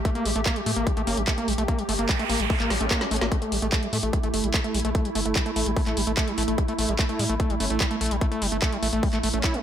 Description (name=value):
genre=psychedelic trance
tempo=147 BPM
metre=4/4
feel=straight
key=unclear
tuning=A4 = 440 Hz
part: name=swarming drone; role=sustained chords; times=0.0-9.6 s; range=A3 to G4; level=-31 LUFS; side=right 1 dB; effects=built-in reverb, sidechain pumping
part: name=round analog bass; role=bass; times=0.0-9.4 s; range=G1 to A2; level=-29 LUFS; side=equal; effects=none
part: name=overdriven acid bass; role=riff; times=0.1-9.6 s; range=G3 to E4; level=-28 LUFS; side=equal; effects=distortion, auto-pan, sidechain pumping, tape echo
part: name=drum and bass drum kit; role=drums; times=0.1-9.6 s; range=handclaps, hi-hat, snare drum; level=-29 LUFS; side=equal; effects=none
part: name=electronic kick drum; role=drums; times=0.1-9.5 s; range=none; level=-25 LUFS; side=equal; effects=none
part: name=formant-sweep wobble bass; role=second line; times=0.3-9.6 s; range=A3 to C#4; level=-40 LUFS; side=left 4 dB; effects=none
part: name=noise sweep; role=sound effects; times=1.8-3.3 s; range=none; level=-31 LUFS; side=right 3 dB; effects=none
room=light reverb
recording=none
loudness=-22 LUFS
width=side -10 dB against mid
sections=0.0-9.6 A section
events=noise sweep 1.8-3.3; drum fill 2.7-3.3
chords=0.0 A5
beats=| 0.05 0.46 0.87 1.27 | 1.68 2.09 2.50 2.91 | 3.32 3.72 4.13 4.54 | 4.95 5.36 5.76 6.17 | 6.58 6.99 7.40 7.81 | 8.21 8.62 9.03 9.44